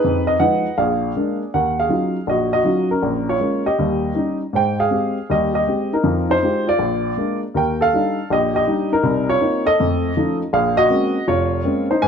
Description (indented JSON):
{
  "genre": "solo jazz",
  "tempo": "160 BPM",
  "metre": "4/4",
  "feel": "swing 65% on 8ths",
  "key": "Bb minor",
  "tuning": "A4 = 440 Hz",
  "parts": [
    { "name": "dark upright piano", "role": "solo", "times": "0.0-12.1 s", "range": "F1 to Ab5", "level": "-16 LUFS", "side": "equal", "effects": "none" }
  ],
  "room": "moderate studio reverb, RT60 0.9 s",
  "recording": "dark, warm production",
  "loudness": "-16 LUFS",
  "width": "side -7 dB against mid",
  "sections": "0.0-1.5 A section; 1.5-12.1 B section",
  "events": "none",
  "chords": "0.0 Fm7b5; 0.8 Bb7; 1.5 Ebm9; 3.0 Bbm7; 3.8 Eb7; 4.5 Abmaj7; 6.0 Fm9; 6.8 Bb7; 7.5 Ebmaj7; 9.0 Dbmaj13/C; 9.8 F7b13; 10.5 Bbm9",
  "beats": "| 0.03 0.40 0.78 1.15 | 1.53 1.90 2.28 2.65 | 3.03 3.41 3.78 4.16 | 4.53 4.91 5.28 5.66 | 6.03 6.41 6.78 7.16 | 7.53 7.91 8.28 8.65 | 9.03 9.40 9.78 10.15 | 10.53 10.90 11.27 11.65 | 12.02"
}